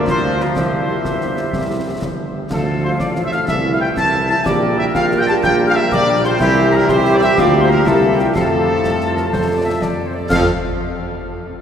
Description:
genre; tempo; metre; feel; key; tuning
military-style march for wind band; 123 BPM (dotted quarters); 6/8; straight; F major; A4 = 442 Hz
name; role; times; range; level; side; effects
dark trumpet section; melody; 0.0-10.4 s; G4 to A5; -22 LUFS; equal; none
clear euphonium; second line; 0.0-10.1 s; E4 to G4; -22 LUFS; right 2 dB; none
mellow woodwind section; second line; 0.0-10.4 s; G4 to G5; -25 LUFS; left 1 dB; none
warm trombone section; sustained chords; 0.0-10.4 s; E3 to C4; -24 LUFS; right 1 dB; none
mellow hollow piccolo; second line; 0.1-10.5 s; G5 to A6; -24 LUFS; left 2 dB; none
mellow tuba; bass; 0.1-10.4 s; G1 to F2; -20 LUFS; right 1 dB; none
concert snare drum, concert bass drum and clash cymbals; drums; 0.1-10.5 s; none; -25 LUFS; left 1 dB; none
mellow French horn section; accompaniment; 0.2-10.4 s; G3 to A4; -23 LUFS; left 3 dB; none
room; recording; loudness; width
wet cathedral reverb, RT60 6.0 s; recorded in a church or concert hall; -14 LUFS; side -8 dB against mid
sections
0.0-10.3 A section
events
none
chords
0.0 Bb/D; 0.6 C; 2.5 Dm; 3.5 Am/C; 4.5 Gm/Bb; 6.4 C; 7.4 Bb/D; 7.9 C7; 8.4 F

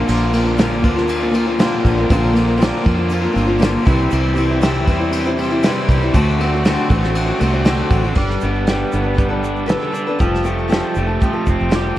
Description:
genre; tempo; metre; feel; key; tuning
folk rock and heartland rock; 119 BPM; 4/4; straight; unclear; A4 = 438 Hz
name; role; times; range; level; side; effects
picked steel-string acoustic guitar; accompaniment; 0.0-12.0 s; Bb2 to C5; -20 LUFS; left 2 dB; none
tonewheel organ; sustained chords; 0.0-12.0 s; B3 to C5; -31 LUFS; right 1 dB; none
crunchy overdriven guitar; riff; 0.0-12.0 s; Bb2 to A4; -21 LUFS; right 1 dB; none
fingered electric bass; bass; 0.0-11.9 s; F1 to F2; -20 LUFS; equal; none
soft brush drum kit; drums; 0.1-11.8 s; crash cymbal, hi-hat, kick drum, ride cymbal, snare drum; -20 LUFS; equal; none
egg shaker; percussion; 0.1-11.8 s; none; -47 LUFS; right 8 dB; none
room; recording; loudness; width
light reverb, small room ambience; worn, warbling old tape, cassette tape, warbly pitch drift; -14 LUFS; side -14 dB against mid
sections
0.0-8.2 A section; 8.2-12.0 B section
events
none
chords
0.0 Bbadd9; 3.9 C; 6.1 D7; 8.2 Gadd9; 10.2 Fadd9

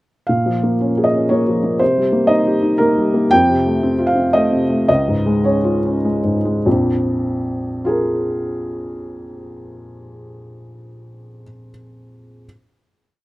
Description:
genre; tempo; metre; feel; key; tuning
neoclassical minimalist piano; 97-123 BPM; 3/4; rubato; Bb dorian; A4 = 440 Hz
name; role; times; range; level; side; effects
felt-muted upright piano; solo; 0.3-12.5 s; Bb1 to G5; -15 LUFS; equal; none
room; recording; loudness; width
small room ambience; rough home demo mix; -14 LUFS; side -18 dB against mid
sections
0.3-6.7 A section; 6.7-10.2 final chord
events
slowing down 2.5-6.7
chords
0.3 Bbm7; 1.8 Cm7; 3.3 F; 4.9 Db; 6.7 Bb5

